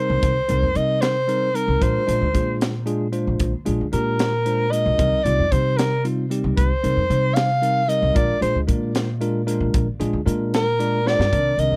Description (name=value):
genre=electric jazz fusion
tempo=76 BPM (dotted quarters)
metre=6/8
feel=straight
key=unclear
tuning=A4 = 440 Hz
part: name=breathy soprano saxophone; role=melody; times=0.0-11.8 s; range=Bb4 to F5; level=-24 LUFS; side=equal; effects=none
part: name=bell-like tine electric piano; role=accompaniment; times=0.0-11.8 s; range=Eb3 to D5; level=-28 LUFS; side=equal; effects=none
part: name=upright bass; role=bass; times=0.0-11.8 s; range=Bb1 to C3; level=-25 LUFS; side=equal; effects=none
part: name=crisp fusion drum kit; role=drums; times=0.2-11.7 s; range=hi-hat, kick drum, snare drum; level=-27 LUFS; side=equal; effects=none
room=little or no reverb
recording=none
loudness=-21 LUFS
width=mono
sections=0.0-11.3 A section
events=soprano saxophone solo 0.0-11.3; tine electric piano fill 10.5-11.3; drum fill 11.1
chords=0.0 Cm7; 1.8 Bb7; 5.0 Cm7; 8.2 Bb7